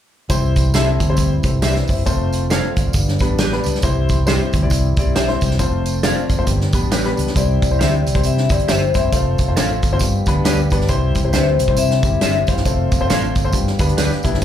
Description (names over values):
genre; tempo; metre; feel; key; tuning
uptempo 1960s-style soul; 136 BPM; 4/4; swing 60% on 8ths; C major; A4 = 440 Hz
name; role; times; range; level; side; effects
warm grand piano; accompaniment; 0.3-14.4 s; G3 to A5; -24 LUFS; left 7 dB; slapback echo
tonewheel organ; sustained chords; 0.3-14.4 s; D3 to A4; -28 LUFS; right 1 dB; overdrive, stopped rotary speaker
vintage muted fingered electric bass; bass; 0.3-14.4 s; F1 to C3; -19 LUFS; equal; none
natural country drum kit; drums; 0.3-14.4 s; hi-hat, kick drum, snare drum; -19 LUFS; right 1 dB; none
tambourine; percussion; 0.3-14.4 s; none; -30 LUFS; right 3 dB; none
electric guitar through a small old amp; stabs; 0.7-14.1 s; D4 to F5; -25 LUFS; right 1 dB; analog chorus, slapback echo
vibraphone with soft mallets; melody; 7.4-14.2 s; B4 to F5; -23 LUFS; left 5 dB; slapback echo, analog delay
room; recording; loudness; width
studio reverb; live gig heard through the venue's PA, club reverb; -15 LUFS; side -10 dB against mid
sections
0.3-7.4 A section; 7.4-14.4 B section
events
none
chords
0.3 C; 2.1 F; 2.9 G; 3.8 C; 5.6 F; 6.5 G; 7.4 C; 9.1 F; 10.0 G; 10.9 C; 12.7 F; 13.5 G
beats
| 0.29 0.73 1.18 1.62 | 2.06 2.50 2.94 3.38 | 3.83 4.27 4.71 5.15 | 5.59 6.04 6.48 6.92 | 7.36 7.80 8.24 8.68 | 9.12 9.57 10.01 10.45 | 10.89 11.33 11.77 12.21 | 12.65 13.09 13.54 13.98 | 14.42